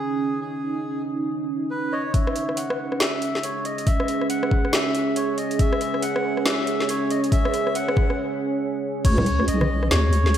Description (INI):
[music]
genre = deep dubstep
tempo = 139 BPM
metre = 4/4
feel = swing 61% on 16ths, half-time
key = C# minor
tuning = A4 = 439 Hz
[part]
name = melodica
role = melody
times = 0.0-10.4 s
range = G#4 to F#5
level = -28 LUFS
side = left 1 dB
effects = low-pass filter, dub echo
[part]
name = deep dark ambient pad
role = sustained chords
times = 0.0-10.4 s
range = C#4 to G#4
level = -25 LUFS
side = right 3 dB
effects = chorus, built-in reverb
[part]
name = electronic kick drum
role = drums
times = 2.1-9.2 s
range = none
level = -20 LUFS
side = left 1 dB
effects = overdrive, studio reverb
[part]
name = garage drum kit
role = drums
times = 2.1-10.4 s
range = crash cymbal, hi-hat, rim click, snare drum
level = -26 LUFS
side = left 1 dB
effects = overdrive, studio reverb
[part]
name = deep soft wobble bass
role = bass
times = 9.0-10.4 s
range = B1 to D#2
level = -20 LUFS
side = left 1 dB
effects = chorus
[part]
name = congas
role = percussion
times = 9.2-9.7 s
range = none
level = -26 LUFS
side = right 1 dB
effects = none
[sound]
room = wet lush hall reverb, RT60 1.5 s, digital ambience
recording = dreamy mix soaked in reverb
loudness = -20 LUFS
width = side -10 dB against mid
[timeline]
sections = 0.0-2.1 A section; 2.1-9.0 B section; 9.0-10.4 C section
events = build-up 2.1-9.0; filter sweep on melodica 2.1-9.0; break 8.2-9.0; drop 9.0-10.4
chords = 0.0 C#5; 2.1 C#m; 9.0 C#5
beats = | 0.41 0.85 1.28 1.71 | 2.14 2.57 3.00 3.44 | 3.87 4.30 4.73 5.16 | 5.59 6.03 6.46 6.89 | 7.32 7.75 8.18 8.62 | 9.05 9.48 9.91 10.34